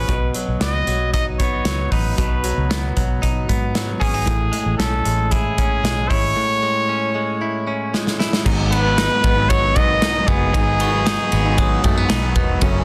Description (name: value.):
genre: jangly indie pop.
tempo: 115 BPM.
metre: 4/4.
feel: straight.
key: unclear.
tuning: A4 = 440 Hz.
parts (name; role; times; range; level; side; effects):
clear trumpet; melody; 0.0-12.4 s; G#4 to D#5; -24 LUFS; equal; plate reverb.
direct-recorded clean electric guitar; arpeggios; 0.0-12.8 s; F#2 to E4; -26 LUFS; equal; plate reverb.
vintage muted fingered electric bass; bass; 0.0-12.8 s; E1 to B2; -25 LUFS; equal; none.
modern studio drum kit; drums; 0.1-12.7 s; crash cymbal, hi-hat, kick drum, ride cymbal, snare drum; -23 LUFS; equal; none.
electric guitar through a small old amp; accompaniment; 8.5-12.8 s; G#2 to D#4; -29 LUFS; equal; analog chorus, plate reverb.
glockenspiel with hard plastic mallets; second line; 10.8-12.7 s; B5 to D#6; -31 LUFS; equal; plate reverb.
room: light reverb.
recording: dense, heavily limited modern master.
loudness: -19 LUFS.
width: mono.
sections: 0.0-8.5 A section; 8.5-12.8 B section.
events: drum fill 7.9-8.5.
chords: 0.1 B; 4.3 Amaj7; 8.5 G#m7.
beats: | 0.09 0.61 1.14 1.66 | 2.18 2.71 3.23 3.75 | 4.27 4.80 5.32 5.84 | 6.37 6.89 7.41 7.93 | 8.45 8.98 9.50 10.02 | 10.54 11.06 11.58 12.10 | 12.62.